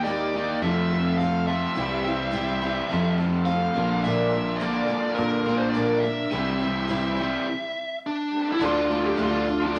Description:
rock; 105 BPM; 4/4; straight; A4 = 441 Hz
bluesy overdriven lead guitar; melody; 0.0-9.8 s; D4 to F5; -30 LUFS; equal; distortion
picked twelve-string acoustic guitar; accompaniment; 0.0-9.8 s; Bb2 to C5; -30 LUFS; equal
bright tonewheel organ; sustained chords; 0.0-9.8 s; G3 to C5; -40 LUFS; equal
crunchy overdriven guitar; riff; 0.0-9.8 s; F2 to G4; -31 LUFS; equal
picked electric bass; bass; 0.0-9.8 s; Bb1 to Bb2; -31 LUFS; equal
wet large studio reverb, RT60 1.2 s; -25 LUFS; mono
0.0-8.6 A section; 8.6-9.8 B section
stop 7.5-8.6
0.0 Eb; 0.6 F; 1.8 C; 2.9 F; 3.8 Bb; 6.3 C; 8.6 Dm

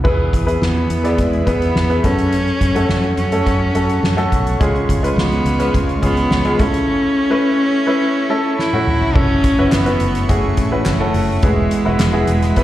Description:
piano-driven pop; 105 BPM; 4/4; straight; F# minor; A4 = 441 Hz
clear baby grand piano; accompaniment; 0.0-12.6 s; C#3 to D5; -20 LUFS; equal; plate reverb, slapback echo
airy breathy pad; sustained chords; 0.6-12.6 s; A3 to C#6; -28 LUFS; right 1 dB; chorus, plate reverb
soft-mallet drum kit; drums; 0.0-12.6 s; crash cymbal, hi-hat, kick drum, snare drum, toms; -20 LUFS; equal
fingered electric bass; bass; 0.1-12.6 s; E1 to F#2; -19 LUFS; equal
rich cello; melody; 0.6-12.6 s; G#3 to E4; -19 LUFS; equal
group handclap; percussion; 9.7-12.1 s; -30 LUFS; left 1 dB
light reverb; live gig heard through the venue's PA, recital hall reverb; -14 LUFS; side -14 dB against mid
0.0-9.2 A section; 9.2-12.6 B section
drum fill 8.6-9.2
0.0 E; 2.0 F#m; 4.6 C#; 6.6 A/C#; 9.2 F#m7; 11.4 Eadd9

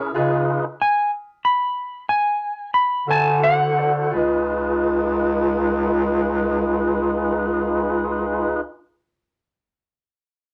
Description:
blues; 55-65 BPM (dotted quarters); 12/8; straight; Db mixolydian; A4 = 440 Hz
clear baby grand piano; accompaniment; 0.0-8.6 s; F4 to E5; -30 LUFS; equal
tonewheel organ; sustained chords; 0.0-8.6 s; Db4 to C5; -26 LUFS; equal; slow rotary speaker
dark bass clarinet; bass; 0.1-8.6 s; Db2 to D3; -24 LUFS; equal
clean lap steel guitar; melody; 0.8-4.1 s; F#5 to Cb6; -21 LUFS; equal
moderate studio reverb, RT60 0.5 s; -21 LUFS; mono
0.0-4.1 A section; 4.1-8.5 B section
slowing down 0.0-4.1; electric slide guitar solo 0.0-4.1
0.2 Db9; 3.1 D9; 4.1 Db9

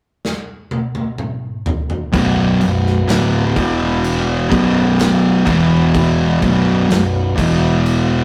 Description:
stoner and doom metal; 63 BPM; 4/4; straight; B minor; A4 = 439 Hz
big rock drum kit; drums; 0.2-8.1 s; crash cymbal, kick drum, snare drum, toms; -24 LUFS; equal
percussive tonewheel organ; sustained chords; 2.1-8.2 s; E3 to B4; -27 LUFS; equal; slow rotary speaker
thick fuzz guitar; riff; 2.1-8.2 s; B1 to E3; -17 LUFS; equal; distortion
thick fuzz guitar; riff; 2.1-8.2 s; B1 to E3; -23 LUFS; equal; distortion
fuzz picked electric bass; bass; 2.1-8.2 s; B0 to E1; -26 LUFS; equal; overdrive
light reverb; rough rehearsal-room recording, tube saturation; -16 LUFS; mono
0.0-2.1 A section; 2.1-8.2 B section
drum fill 0.2-2.1
0.0 N.C.; 2.1 Bm; 3.6 E5; 4.5 B5; 5.5 E5; 6.4 B5; 7.4 E5

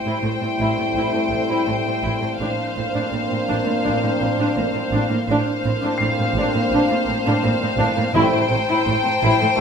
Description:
cinematic; 83 BPM; 4/4; straight; A4 = 439 Hz
warm studio violin section; melody; 0.0-9.6 s; F5 to G5; -25 LUFS; left 2 dB
dark studio violin section; second line; 0.0-9.6 s; C5; -26 LUFS; left 1 dB
warm French horn section; sustained chords; 0.0-8.4 s; C4 to E4; -26 LUFS; left 3 dB
warm trombone section; sustained chords; 0.0-9.6 s; F3 to Bb3; -29 LUFS; right 4 dB
warm studio cello section; bass; 0.0-9.6 s; A2; -27 LUFS; right 3 dB
warm grand piano; texture; 0.0-8.2 s; C7; -30 LUFS; left 2 dB
dark studio viola section; accompaniment; 0.1-9.5 s; A3 to E4; -24 LUFS; equal
dark studio double bass section; bass; 0.2-9.3 s; A1; -27 LUFS; right 3 dB
timpani; percussion; 8.1-9.2 s; A2; -30 LUFS; equal
warm studio violin section; texture; 8.1-9.6 s; A5 to Bb5; -34 LUFS; left 8 dB
wet recital hall reverb, RT60 1.4 s; -18 LUFS; side -6 dB against mid
0.0-9.6 A section
0.0 Am7; 2.4 Bbadd9/A; 8.2 Am7

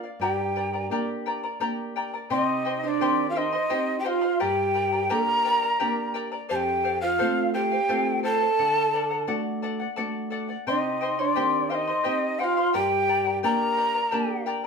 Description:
andean folk, Andean ensemble; 86 BPM; 3/4; straight; G minor; A4 = 440 Hz
charango; accompaniment; 0.0-14.7 s; G4 to C6; -29 LUFS; left 5 dB
nylon-string guitar; accompaniment; 0.0-14.7 s; F2 to G4; -32 LUFS; right 2 dB
breathy mellow quena; melody; 0.2-14.4 s; D5 to Bb5; -25 LUFS; equal; slapback echo
breathy bright pan flute; second line; 0.2-14.4 s; D4 to Bb4; -28 LUFS; right 3 dB
moderate studio reverb, RT60 0.7 s; band playing live in one room; -22 LUFS; side -5 dB against mid
0.0-2.3 A section; 2.3-14.7 B section
0.2 Gm; 2.3 Cm; 4.4 Gm; 6.5 F; 8.6 D; 10.7 Cm; 12.7 Gm

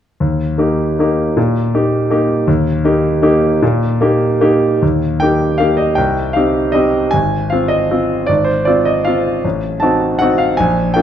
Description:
classical, piano waltz; 141-170 BPM; 3/4; rubato; Eb major; A4 = 436 Hz
clear grand piano; solo; 0.2-11.0 s; Ab1 to A5; -12 LUFS; equal
moderate recital hall reverb, RT60 1.6 s; dark, warm production; -12 LUFS; side -10 dB against mid
0.2-4.8 A section; 4.8-11.0 B section
0.2 Eb; 6.0 Cm; 7.1 Fm/Ab; 9.4 Adim7

